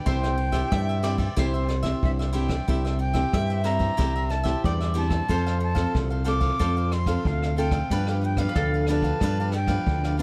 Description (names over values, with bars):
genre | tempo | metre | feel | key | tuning
samba and choro | 92 BPM | 4/4 | straight | unclear | A4 = 440 Hz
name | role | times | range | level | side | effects
jazz flute | melody | 0.0-10.2 s | E5 to D6 | -33 LUFS | equal | none
mandolin | second line | 0.0-10.2 s | A4 to E5 | -35 LUFS | equal | none
cavaquinho | accompaniment | 0.0-10.2 s | D4 to F5 | -37 LUFS | equal | none
nylon-string guitar | accompaniment | 0.0-10.2 s | G2 to A4 | -32 LUFS | equal | none
growling fingered electric bass | bass | 0.1-10.2 s | C2 to G2 | -28 LUFS | equal | overdrive
jazz brush drum kit | drums | 0.1-10.2 s | kick drum, ride cymbal, rim click | -32 LUFS | equal | none
room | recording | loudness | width
little or no reverb | none | -24 LUFS | mono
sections
0.0-10.2 A section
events
none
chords
0.1 C; 5.3 F; 7.9 G7